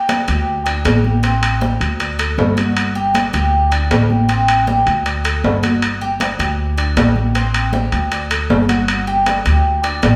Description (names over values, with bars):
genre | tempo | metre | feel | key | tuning
latin, Cuban son and guajira | 157 BPM | 4/4 | straight | unclear | A4 = 441 Hz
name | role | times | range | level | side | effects
Cuban tres | arpeggios | 0.0-10.2 s | C4 to D5 | -22 LUFS | equal | none
congas | percussion | 0.1-10.2 s | none | -24 LUFS | equal | none
timbales | percussion | 0.1-10.2 s | none | -22 LUFS | equal | none
upright bass | bass | 0.3-10.2 s | G1 to D2 | -20 LUFS | equal | none
room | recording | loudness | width
wet large studio reverb, RT60 1.2 s | band playing live in one room | -16 LUFS | mono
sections
0.0-10.2 A section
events
none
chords
0.5 Dsus4; 1.2 Am7; 2.0 Dsus4; 2.8 G5; 3.5 Dsus4; 4.3 Am7; 5.1 Dsus4; 5.8 G5; 6.6 Dsus4; 7.4 Am7; 8.1 Dsus4; 8.9 G5; 9.6 Dsus4